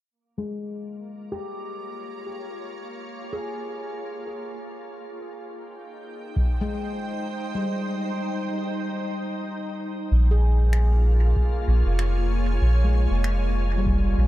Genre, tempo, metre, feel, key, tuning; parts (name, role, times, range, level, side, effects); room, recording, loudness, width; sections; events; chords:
ambient dub; 96 BPM; 4/4; swing 56% on 16ths; Bb dorian; A4 = 440 Hz
soft additive organ-like pad; sustained chords; 0.8-14.3 s; Bb3 to Bb5; -33 LUFS; right 1 dB; ensemble chorus, built-in reverb
handpan; arpeggios; 0.4-14.3 s; G3 to Ab4; -32 LUFS; left 1 dB; low-pass filter, dub echo
electronic kick drum; drums; 6.4-6.5, 11.4-14.0 s; -24 LUFS; equal
soft dub sub bass; bass; 10.1-14.3 s; F1 to Bb1; -19 LUFS; equal
finger snaps; drums; 10.7-13.4 s; -39 LUFS; equal; dub echo
studio reverb; -22 LUFS; side -15 dB against mid
0.1-10.1 A section; 10.1-14.3 B section
fade-in on ambient pad 0.1-10.1; kick drops out 7.6-10.1
0.1 Bbm7; 5.1 Abmaj7; 10.1 Bbm7